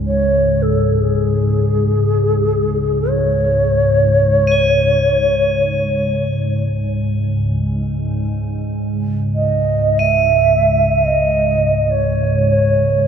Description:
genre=world meditative, free-time meditation music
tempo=free time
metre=none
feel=none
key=C# hirajoshi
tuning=A4 = 440 Hz
part: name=glassy FM pad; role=drone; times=0.0-13.1 s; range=C#2 to G#2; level=-17 LUFS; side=equal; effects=ensemble chorus, built-in reverb
part: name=mellow hollow xiao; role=melody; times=0.1-13.1 s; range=G#4 to E5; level=-15 LUFS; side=right 1 dB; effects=ping-pong delay
part: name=crotales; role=texture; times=4.5-13.1 s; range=D#7 to G#7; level=-25 LUFS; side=left 1 dB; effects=none
room=wet church reverb, RT60 3.0 s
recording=dark, warm production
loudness=-14 LUFS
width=side -7 dB against mid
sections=0.0-13.1 A section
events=none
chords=none

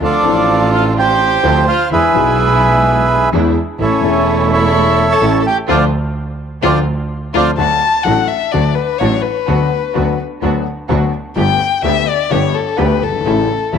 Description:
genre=tango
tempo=127 BPM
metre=4/4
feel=rubato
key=D minor, D major from 7.6 s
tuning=A4 = 441 Hz
part: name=bandoneon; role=melody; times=0.0-7.5 s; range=E4 to A5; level=-14 LUFS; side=right 4 dB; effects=none
part: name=warm violin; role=second line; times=0.0-13.8 s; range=C#4 to A5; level=-18 LUFS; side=left 8 dB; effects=none
part: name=dark concert grand piano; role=accompaniment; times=0.0-13.8 s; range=E1 to A4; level=-19 LUFS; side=left 10 dB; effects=none
part: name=warm studio string section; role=stabs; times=0.0-13.8 s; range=G#3 to G4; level=-24 LUFS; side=right 9 dB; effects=none
part: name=clear double bass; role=bass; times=0.0-13.8 s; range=E1 to E2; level=-18 LUFS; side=right 2 dB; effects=none
room=moderate spring reverb, RT60 2.2 s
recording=1960s-style stereo with parts hard left and right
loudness=-11 LUFS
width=side -7 dB against mid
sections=0.0-7.6 A section; 7.6-13.8 B section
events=band accent 5.7-7.6; violin solo 7.6-13.8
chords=0.0 Dm7; 1.9 E7; 3.8 A; 5.7 Dm7; 7.6 D; 9.5 Bm/D; 11.4 Gadd9; 13.3 A

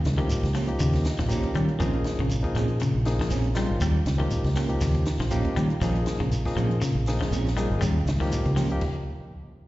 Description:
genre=afrobeat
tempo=120 BPM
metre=4/4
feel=swing 55% on 16ths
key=unclear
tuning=A4 = 439 Hz
part: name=semi-hollow electric guitar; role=stabs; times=0.0-8.7 s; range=F3 to Ab4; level=-33 LUFS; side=right 5 dB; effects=lush chorus, slapback echo
part: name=fingered electric bass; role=bass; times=0.0-8.8 s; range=Ab1 to Eb3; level=-25 LUFS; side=equal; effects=none
part: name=shekere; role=percussion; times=0.0-8.7 s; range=none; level=-34 LUFS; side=right 1 dB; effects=slapback echo
part: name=compact cocktail drum kit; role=drums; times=0.1-8.9 s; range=crash cymbal, hi-hat, kick drum, snare drum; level=-32 LUFS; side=equal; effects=none
part: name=barky tine electric piano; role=accompaniment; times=0.2-8.8 s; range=F3 to Bb5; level=-31 LUFS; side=left 1 dB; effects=overdrive, slapback echo
part: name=electric guitar at the edge of break-up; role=arpeggios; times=0.2-8.7 s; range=Db3 to G3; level=-32 LUFS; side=left 4 dB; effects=wide subtle chorus, slapback echo
room=light reverb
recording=live gig heard through the venue's PA, recital hall reverb, nothing above 7.8 kHz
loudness=-22 LUFS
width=side -17 dB against mid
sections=0.0-9.7 A section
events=tine electric piano fill 0.8-1.8; stop 8.8-9.7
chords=0.0 Eb7; 1.8 Bbm9; 3.8 Eb7; 5.8 Bbm9; 7.8 Eb7

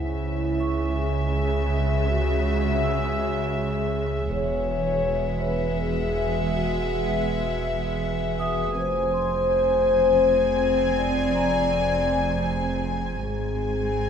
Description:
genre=cinematic, suspense film score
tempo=81 BPM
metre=3/4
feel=straight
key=C# minor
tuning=A4 = 440 Hz
part: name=warm chamber violin section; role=melody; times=0.0-14.1 s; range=E5 to Ab5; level=-38 LUFS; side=left 2 dB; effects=none
part: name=warm studio violin section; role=second line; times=0.0-14.1 s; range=E5 to Ab5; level=-31 LUFS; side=left 4 dB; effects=none
part: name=warm chamber viola section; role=accompaniment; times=0.0-14.1 s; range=G#3 to C4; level=-33 LUFS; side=right 3 dB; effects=none
part: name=dark French horn section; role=sustained chords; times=0.0-14.1 s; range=E4 to D5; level=-25 LUFS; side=left 3 dB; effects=none
part: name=glass harmonica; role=sustained chords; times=0.0-14.1 s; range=F#4 to G#5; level=-35 LUFS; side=equal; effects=none
part: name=clear chamber double bass section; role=bass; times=0.0-14.1 s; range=E1 to C#2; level=-32 LUFS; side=right 5 dB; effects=none
part: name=dark chamber cello section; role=bass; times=0.0-14.1 s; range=E2 to C#3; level=-31 LUFS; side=right 3 dB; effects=none
part: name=punchy sub bass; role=drone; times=0.0-14.1 s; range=E1 to C#2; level=-31 LUFS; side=right 1 dB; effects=none
part: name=vibraphone with medium mallets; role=texture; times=0.6-14.1 s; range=C5 to E6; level=-36 LUFS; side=right 1 dB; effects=none
room=wet scoring stage reverb, RT60 1.6 s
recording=minimal, uncompressed stereo recording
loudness=-21 LUFS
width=side -7 dB against mid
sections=0.0-14.1 A section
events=none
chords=0.0 C#m; 4.3 Eadd9; 8.8 Fm; 13.2 G#

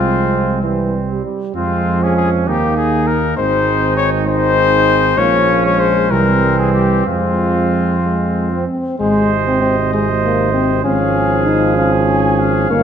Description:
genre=classical, brass quintet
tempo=65 BPM (dotted quarters)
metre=6/8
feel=rubato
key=F minor, Ab major from 9.0 s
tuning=A4 = 439 Hz
part: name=clear cornet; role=melody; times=0.0-12.8 s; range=F4 to Ab5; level=-18 LUFS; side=left 8 dB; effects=none
part: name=warm trumpet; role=second line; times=0.0-12.8 s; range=C4 to Db5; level=-21 LUFS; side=right 7 dB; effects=none
part: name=clear trombone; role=accompaniment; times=0.0-12.8 s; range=C3 to Bb3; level=-21 LUFS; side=right 3 dB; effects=none
part: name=warm French horn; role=accompaniment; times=0.0-12.8 s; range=G3 to Eb4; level=-19 LUFS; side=left 2 dB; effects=none
part: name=mellow tuba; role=bass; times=0.0-12.8 s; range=G1 to F2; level=-18 LUFS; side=right 4 dB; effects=none
room=wet recital hall reverb, RT60 1.5 s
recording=none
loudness=-12 LUFS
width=side -8 dB against mid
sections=0.0-9.0 A section; 9.0-12.8 B section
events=none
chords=0.0 Fm/C; 0.6 C; 1.6 Fm; 2.5 Eb5; 3.4 Ab; 5.2 Bbm; 6.1 C7; 7.1 Fm; 9.0 Ab; 10.9 Dbadd9/Ab

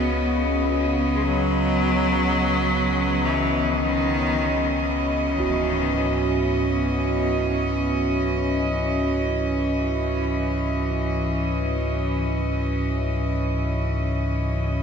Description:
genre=dark ambient drone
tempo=free time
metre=none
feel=none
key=C# minor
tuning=A4 = 440 Hz
part: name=bright cello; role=melody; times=0.0-4.8 s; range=D#3 to B3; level=-26 LUFS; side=equal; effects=ping-pong delay
part: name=rich symphonic cello section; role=sustained chords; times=0.0-14.8 s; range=C#3 to D#5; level=-23 LUFS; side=equal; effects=none
part: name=dark detuned synth bell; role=arpeggios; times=0.0-14.8 s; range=E4 to F#4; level=-41 LUFS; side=left 3 dB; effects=none
part: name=deep rumbling drone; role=drone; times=0.0-14.8 s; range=C#2 to G#2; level=-26 LUFS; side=left 1 dB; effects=built-in reverb, wide subtle chorus
part: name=bronze singing bowl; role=texture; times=0.0-14.8 s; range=F#4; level=-33 LUFS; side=right 8 dB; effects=none
part: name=impact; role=percussion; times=5.4-5.6 s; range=none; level=-43 LUFS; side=right 1 dB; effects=none
room=wet cathedral reverb, RT60 5.0 s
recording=dreamy mix soaked in reverb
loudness=-20 LUFS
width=side -6 dB against mid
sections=0.0-5.4 A section; 5.4-14.8 B section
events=none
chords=0.0 B/C#; 5.4 C#m

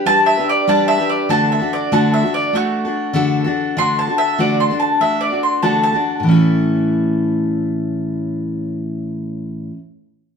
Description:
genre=rock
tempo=97 BPM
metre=4/4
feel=straight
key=A mixolydian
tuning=A4 = 439 Hz
part: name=picked steel-string acoustic guitar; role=accompaniment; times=0.0-9.8 s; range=A2 to B4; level=-17 LUFS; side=left 1 dB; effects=none
part: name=bowl-back mandolin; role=melody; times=0.1-6.1 s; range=A3 to C6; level=-16 LUFS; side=right 1 dB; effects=none
room=wet stone room reverb, RT60 1.1 s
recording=band playing live in one room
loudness=-15 LUFS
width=side -6 dB against mid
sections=0.0-6.3 A section; 6.3-8.7 B section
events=mandolin solo 0.0-6.3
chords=0.0 G; 1.3 D; 6.3 A

